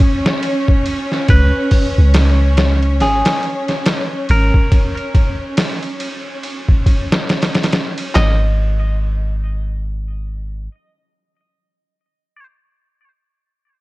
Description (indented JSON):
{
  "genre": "trip hop",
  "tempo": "70 BPM",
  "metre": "4/4",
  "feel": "swing 59% on 16ths",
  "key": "G# minor",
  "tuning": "A4 = 438 Hz",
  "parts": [
    { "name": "semi-hollow electric guitar", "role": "melody", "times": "0.0-12.5 s", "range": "G#4 to D#5", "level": "-22 LUFS", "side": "equal", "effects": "phaser, tape echo" },
    { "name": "clear symphonic string section", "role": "sustained chords", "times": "0.0-8.2 s", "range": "C#4 to C#5", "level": "-22 LUFS", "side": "equal", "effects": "none" },
    { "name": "trip hop sampler-style drum kit", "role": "drums", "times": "0.0-8.4 s", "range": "handclaps, hi-hat, kick drum, ride cymbal, snare drum", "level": "-16 LUFS", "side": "equal", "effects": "none" },
    { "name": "soft 808-style bass", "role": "bass", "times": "1.3-10.7 s", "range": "G#1 to C#2", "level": "-14 LUFS", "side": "equal", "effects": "none" }
  ],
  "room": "little or no reverb",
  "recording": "dark, warm production",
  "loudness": "-13 LUFS",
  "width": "side -19 dB against mid",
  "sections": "0.0-8.1 A section; 8.1-11.6 B section",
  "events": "none",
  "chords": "0.0 G#sus4; 1.3 C#5; 4.7 N.C.; 8.1 G#5"
}